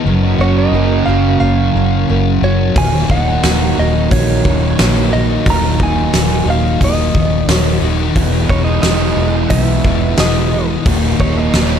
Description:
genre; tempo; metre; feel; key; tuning
rock, shoegaze and dream pop; 89 BPM; 4/4; straight; Eb minor; A4 = 441 Hz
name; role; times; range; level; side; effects
fingerpicked twelve-string acoustic guitar; arpeggios; 0.0-11.8 s; Eb2 to Gb4; -24 LUFS; right 9 dB; lush chorus, tape echo
overdriven electric guitar; riff; 0.0-11.8 s; Eb2 to Gb4; -20 LUFS; right 12 dB; reverse reverb
thick fuzz guitar; riff; 0.0-11.8 s; Eb2 to Gb3; -18 LUFS; left 11 dB; distortion, lush chorus
vintage muted fingered electric bass; bass; 0.1-11.8 s; Eb1 to B1; -16 LUFS; equal; none
direct-recorded clean electric guitar; melody; 0.4-11.8 s; Db5 to Bb5; -21 LUFS; right 1 dB; tape echo
huge arena drum kit; drums; 2.8-11.7 s; hi-hat, kick drum, snare drum; -17 LUFS; equal; none
room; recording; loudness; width
small room ambience; dark, warm production; -11 LUFS; side -8 dB against mid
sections
0.0-11.8 A section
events
none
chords
0.1 Gbmaj7; 2.8 Ebm; 8.2 Emaj7; 10.9 Ebm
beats
| 0.05 0.73 1.41 2.08 | 2.76 3.44 4.11 4.79 | 5.46 6.14 6.81 7.49 | 8.16 8.84 9.51 10.19 | 10.86 11.53

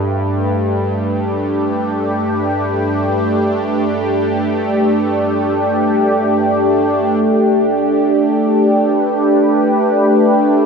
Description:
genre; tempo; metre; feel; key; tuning
ambient; free time; none; none; G major; A4 = 440 Hz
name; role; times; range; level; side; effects
warm analog pad; solo; 0.0-10.7 s; G2 to B4; -13 LUFS; equal; chorus
room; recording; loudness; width
wet huge ambient reverb, RT60 7.7 s; none; -13 LUFS; side -5 dB against mid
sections
0.0-7.2 A section; 7.2-10.7 B section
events
none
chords
0.0 Gadd9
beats
free time

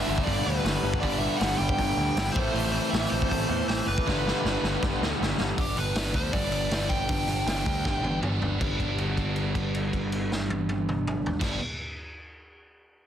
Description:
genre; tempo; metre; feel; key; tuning
punk rock; 158 BPM; 4/4; straight; G major; A4 = 441 Hz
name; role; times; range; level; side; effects
nasal lead guitar with a parked wah; melody; 0.0-8.2 s; G4 to G5; -31 LUFS; equal; overdrive
biting overdriven guitar; riff; 0.0-11.6 s; G2 to E4; -30 LUFS; right 1 dB; none
raw garage guitar; riff; 0.0-5.6 s; G2 to A3; -30 LUFS; equal; overdrive
growling picked electric bass; bass; 0.1-11.6 s; F#1 to E2; -31 LUFS; equal; overdrive
raw garage drum kit; drums; 0.2-11.5 s; crash cymbal, hi-hat, kick drum, snare drum, toms; -30 LUFS; equal; none
room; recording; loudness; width
light reverb; dense, heavily limited modern master; -24 LUFS; side -10 dB against mid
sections
0.0-5.6 A section; 5.6-8.6 B section; 8.6-11.6 C section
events
drum fill 4.1-5.6, 7.8-8.6; held note 8.6-11.4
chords
0.0 G; 2.4 Am; 4.1 G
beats
0.28 0.66 | 1.03 1.42 1.79 2.17 | 2.55 2.93 3.31 3.69 | 4.07 4.44 4.82 5.20 | 5.58 5.96 6.33 6.71 | 7.09 7.47 7.85 8.23 | 8.61 8.99 9.37 9.75 | 10.12 10.50 10.88 11.26

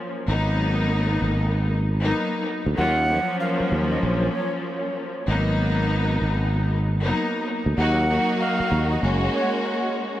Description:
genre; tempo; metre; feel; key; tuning
hip hop; 96 BPM; 4/4; swing 62% on 16ths; Eb minor; A4 = 440 Hz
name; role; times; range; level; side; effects
rich studio string section; accompaniment; 0.0-10.2 s; F3 to Gb4; -24 LUFS; left 1 dB; cassette tape, analog delay
sustaining fretless electric bass; bass; 0.3-9.3 s; Gb1 to Eb2; -22 LUFS; equal; none
silver concert flute; melody; 2.8-9.5 s; Db5 to Gb5; -27 LUFS; right 1 dB; analog delay
room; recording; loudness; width
light reverb; echo-heavy mix; -20 LUFS; side -13 dB against mid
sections
0.0-7.8 A section; 7.8-10.2 B section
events
none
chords
0.3 Abm9; 2.8 Ebm9; 5.3 Abm9; 7.8 Ebm; 9.0 Gbadd9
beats
| 0.27 0.90 1.52 2.15 | 2.77 3.40 4.02 4.65 | 5.27 5.90 6.52 7.15 | 7.77 8.40 9.02 9.65

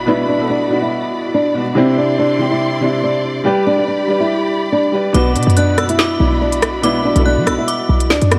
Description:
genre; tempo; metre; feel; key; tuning
hip hop, drill; 142 BPM; 4/4; half-time; B phrygian; A4 = 441 Hz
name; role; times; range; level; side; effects
felt-muted upright piano; accompaniment; 0.0-8.4 s; B2 to D5; -20 LUFS; equal; low-pass filter
warm symphonic string section; sustained chords; 0.0-8.4 s; E4 to C6; -26 LUFS; equal; none
flamenco guitar; melody; 0.1-8.3 s; B3 to G4; -20 LUFS; equal; low-pass filter
metallic FM bell; second line; 5.1-8.4 s; D6 to F#6; -26 LUFS; equal; chorus, digital delay
short 808-style bass; bass; 5.1-8.4 s; B1 to F#3; -18 LUFS; equal; none
drill drum kit; drums; 5.1-8.4 s; hi-hat, rim click, snare drum; -20 LUFS; equal; none
room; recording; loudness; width
light reverb, small room ambience; vinyl crackle; -15 LUFS; mono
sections
0.0-8.4 A section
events
none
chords
0.0 Bm; 1.8 Cadd9; 3.5 G; 5.1 Bm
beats
| 0.07 0.50 0.92 1.34 | 1.76 2.19 2.61 3.03 | 3.46 3.88 4.30 4.72 | 5.14 5.57 5.99 6.41 | 6.84 7.26 7.68 8.10

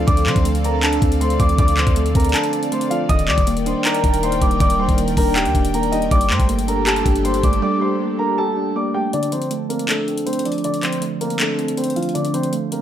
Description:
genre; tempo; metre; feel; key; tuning
hip hop, trap; 159 BPM; 4/4; half-time; D phrygian; A4 = 438 Hz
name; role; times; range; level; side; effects
dark baby grand piano; melody; 0.0-12.8 s; F3 to Eb6; -22 LUFS; equal; low-pass filter, diffuse ambient delay
muted felt-like synth keys; accompaniment; 0.0-12.8 s; D3 to G4; -22 LUFS; right 3 dB; chorus, low-pass filter
airy breathy pad; sustained chords; 0.0-9.1 s; Eb3 to G5; -25 LUFS; left 2 dB; chorus
clean 808-style bass; bass; 0.0-7.6 s; Eb1 to D3; -21 LUFS; equal; none
trap drum kit; drums; 0.1-12.8 s; handclaps, hi-hat, kick drum; -20 LUFS; equal; none
room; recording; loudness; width
wet plate reverb, RT60 1.2 s; dreamy mix soaked in reverb; -16 LUFS; side -10 dB against mid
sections
0.0-9.1 A section; 9.1-12.8 B section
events
break 2.3-3.1, 7.6-9.1, 9.1-12.8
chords
0.0 Dm7; 3.1 Ebmaj7; 6.1 Gmadd9; 9.1 Dm7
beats
| 0.08 0.45 0.83 1.21 | 1.58 1.96 2.34 2.72 | 3.10 3.47 3.85 4.23 | 4.60 4.98 5.36 5.74 | 6.11 6.49 6.87 7.25 | 7.62 8.00 8.38 8.76 | 9.13 9.51 9.89 10.27 | 10.64 11.02 11.40 11.77 | 12.15 12.53

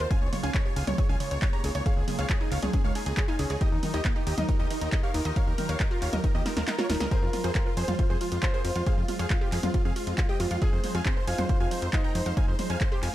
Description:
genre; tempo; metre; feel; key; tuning
uplifting trance; 137 BPM; 4/4; straight; F minor; A4 = 442 Hz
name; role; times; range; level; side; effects
big supersaw lead; melody; 0.0-13.1 s; Eb4 to Bb5; -35 LUFS; right 1 dB; sidechain pumping, dub echo
wide unison pluck; second line; 0.0-13.1 s; Eb4 to Bb5; -39 LUFS; right 1 dB; cassette tape, sidechain pumping, dub echo
dark studio string section; sustained chords; 0.0-13.1 s; Db3 to Bb4; -39 LUFS; left 3 dB; sidechain pumping
analog pluck; arpeggios; 0.0-13.0 s; Db3 to F5; -36 LUFS; right 2 dB; chorus, sidechain pumping, dub echo
plucky analog bass; bass; 0.0-13.1 s; Eb1 to F2; -30 LUFS; equal; tube saturation, sidechain pumping
punchy analog drum machine; drums; 0.0-13.1 s; handclaps, hi-hat, ride cymbal, snare drum, toms; -33 LUFS; equal; none
electronic kick drum; drums; 0.1-12.9 s; none; -26 LUFS; equal; none
bright grand piano; second line; 7.1-12.5 s; Eb4 to C5; -36 LUFS; left 1 dB; tape echo
room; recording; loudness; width
light reverb; dark, warm production; -24 LUFS; side -14 dB against mid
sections
0.0-13.1 A section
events
drum fill 6.5-7.1; kick drops out 6.7-7.1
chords
0.1 Db6; 3.6 Ebadd9; 7.1 Fm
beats
| 0.11 0.54 0.98 1.42 | 1.86 2.30 2.73 3.17 | 3.61 4.05 4.49 4.92 | 5.36 5.80 6.24 6.68 | 7.11 7.55 7.99 8.43 | 8.87 9.30 9.74 10.18 | 10.62 11.05 11.49 11.93 | 12.37 12.81

